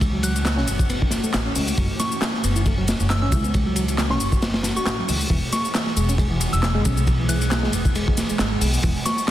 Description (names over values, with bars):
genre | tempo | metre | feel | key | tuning
breakbeat, breaks | 136 BPM | 4/4 | swing 55% on 16ths | F# minor | A4 = 442 Hz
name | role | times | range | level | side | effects
phased analog pad | sustained chords | 0.0-9.3 s | E3 to G#4 | -30 LUFS | right 1 dB | phaser, chorus, sidechain pumping
upright bass | bass | 0.0-8.9 s | E1 to C#2 | -24 LUFS | equal | none
crunchy breakbeat drum kit | drums | 0.0-9.3 s | hi-hat, kick drum, ride cymbal, snare drum | -23 LUFS | equal | none
house drum kit | drums | 0.0-9.3 s | handclaps, ride cymbal, shaker | -29 LUFS | left 2 dB | overdrive
bright reed electric piano | riff | 0.1-8.9 s | E3 to F#4 | -29 LUFS | equal | vintage 12-bit sampler grit, tape echo
soft synth bell | melody | 0.2-9.2 s | C#6 to F#6 | -30 LUFS | equal | chorus, phaser, small speaker sound, tape echo
room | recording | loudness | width
light reverb, studio reverb | dense, heavily limited modern master | -19 LUFS | side -13 dB against mid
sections
0.0-9.3 A section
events
none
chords
0.0 F#m7; 5.3 E